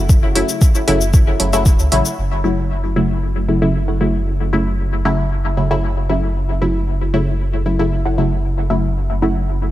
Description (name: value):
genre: dub techno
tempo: 115 BPM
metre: 4/4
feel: straight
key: F# minor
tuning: A4 = 440 Hz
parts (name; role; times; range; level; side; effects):
- filtered dub chord stab; stabs; 0.0-9.4 s; C#3 to E4; -18 LUFS; equal; chorus, phaser, sidechain pumping, dub echo
- soft dub sub bass; bass; 0.0-9.7 s; F#1 to C#2; -19 LUFS; equal; sidechain pumping
- electronic cabasa and hi-hat; drums; 0.1-2.2 s; none; -23 LUFS; left 2 dB; overdrive
- electronic kick drum; drums; 0.1-1.8 s; none; -11 LUFS; equal; none
- filtered dub chord stab; riff; 1.5-9.4 s; E4 to F#5; -30 LUFS; left 1 dB; phaser, analog chorus, sidechain pumping, dub echo
room: light reverb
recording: none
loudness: -14 LUFS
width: side -14 dB against mid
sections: 0.0-2.2 A section; 2.2-9.7 B section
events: none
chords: 0.0 F#m7